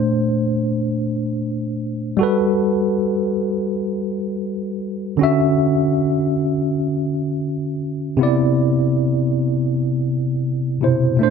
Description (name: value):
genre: R&B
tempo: free time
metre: none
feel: none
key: unclear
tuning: A4 = 441 Hz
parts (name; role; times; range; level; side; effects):
- tine electric piano; solo; 0.0-11.3 s; Bb2 to E5; -17 LUFS; equal; overdrive, fast stereo tremolo
room: light reverb, digital ambience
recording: none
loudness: -18 LUFS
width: side -6 dB against mid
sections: 0.0-11.3 A section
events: none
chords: 0.0 Bbmaj9; 2.2 Gmaj9; 5.2 Dmaj9; 8.2 Cmaj9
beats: free time